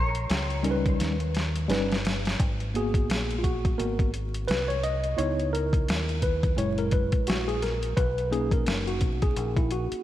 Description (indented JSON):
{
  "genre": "hip hop, jazz-hop",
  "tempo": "86 BPM",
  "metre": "4/4",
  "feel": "swing 58% on 16ths",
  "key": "G# minor",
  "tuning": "A4 = 440 Hz",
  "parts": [
    { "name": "vintage hollow-body jazz guitar", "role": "melody", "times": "0.0-2.0 s", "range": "C#5", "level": "-34 LUFS", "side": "left 1 dB", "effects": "lush chorus, tape echo" },
    { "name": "deep dub fingered electric bass", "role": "bass", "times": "0.0-9.9 s", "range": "F#1 to D#2", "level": "-30 LUFS", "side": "equal", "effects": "none" },
    { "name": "boom bap sampler-style drum kit", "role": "drums", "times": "0.1-10.0 s", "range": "hi-hat, kick drum, snare drum", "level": "-27 LUFS", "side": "equal", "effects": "none" },
    { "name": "tine electric piano", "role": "accompaniment", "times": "0.6-10.0 s", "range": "A#2 to D#5", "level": "-28 LUFS", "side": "left 1 dB", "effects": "overdrive, fast stereo tremolo" }
  ],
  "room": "moderate lush hall reverb, RT60 3.0 s",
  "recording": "dreamy mix soaked in reverb, vinyl crackle",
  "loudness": "-24 LUFS",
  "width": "side -13 dB against mid",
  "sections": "0.0-2.4 A section; 2.4-10.0 B section",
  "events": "drum fill 1.0-2.4; tine electric piano solo 2.4-10.0",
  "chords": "0.0 A#madd11; 1.0 D#aug7; 2.4 G#m9; 5.2 C#m9; 6.6 F#9; 8.0 Bmaj7"
}